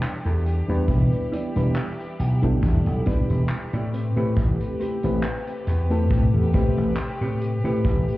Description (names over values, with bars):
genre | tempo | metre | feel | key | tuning
vaporwave | 69 BPM | 4/4 | swing 54% on 16ths | A minor | A4 = 443 Hz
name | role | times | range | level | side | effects
warm chamber string section | sustained chords | 0.0-8.2 s | C3 to B4 | -33 LUFS | left 1 dB | none
unplugged drum kit | drums | 0.0-8.2 s | handclaps, hi-hat | -38 LUFS | equal | none
mellow electric guitar | riff | 0.3-7.7 s | C4 to D5 | -35 LUFS | right 2 dB | analog chorus, vintage 12-bit sampler grit, tape echo
vintage slap bass | bass | 0.3-8.0 s | E1 to A2 | -22 LUFS | equal | tube saturation
mellow FM electric piano | accompaniment | 0.7-8.2 s | G3 to B4 | -28 LUFS | equal | wide subtle chorus, tape echo
kick drum | drums | 0.9-8.0 s | none | -23 LUFS | equal | none
room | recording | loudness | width
light reverb, studio ambience | heard muffled through a wall, cassette tape, club reverb, EQ | -20 LUFS | side -17 dB against mid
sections
0.0-8.2 A section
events
none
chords
0.0 Em7; 3.9 Am9